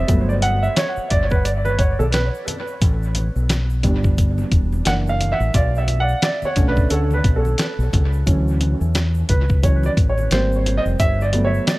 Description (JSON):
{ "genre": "hip hop, jazz-hop", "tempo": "88 BPM", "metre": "4/4", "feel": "swing 59% on 16ths", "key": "unclear", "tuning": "A4 = 437 Hz", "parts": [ { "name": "dark concert grand piano", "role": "accompaniment", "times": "0.0-11.8 s", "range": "D3 to F#5", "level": "-22 LUFS", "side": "right 2 dB", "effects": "dub echo" }, { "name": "deep dub fingered electric bass", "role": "bass", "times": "0.0-11.6 s", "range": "E1 to E2", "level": "-20 LUFS", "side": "equal", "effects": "none" }, { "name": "dusty soul sampler-style drum kit", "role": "drums", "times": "0.1-11.8 s", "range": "hi-hat, kick drum, snare drum", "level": "-19 LUFS", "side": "equal", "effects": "none" }, { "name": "egg shaker and congas", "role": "percussion", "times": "0.1-11.8 s", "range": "none", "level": "-36 LUFS", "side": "left 4 dB", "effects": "dub echo" } ], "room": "little or no reverb", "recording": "echo-heavy mix", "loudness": "-16 LUFS", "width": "side -19 dB against mid", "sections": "0.0-11.8 A section", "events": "grand piano solo 0.0-11.8", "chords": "0.1 Gmaj7; 2.8 A9sus4; 4.9 F#7alt; 5.5 Bm7; 8.3 Dmaj9; 10.3 G#maj7; 11.0 Gmaj7" }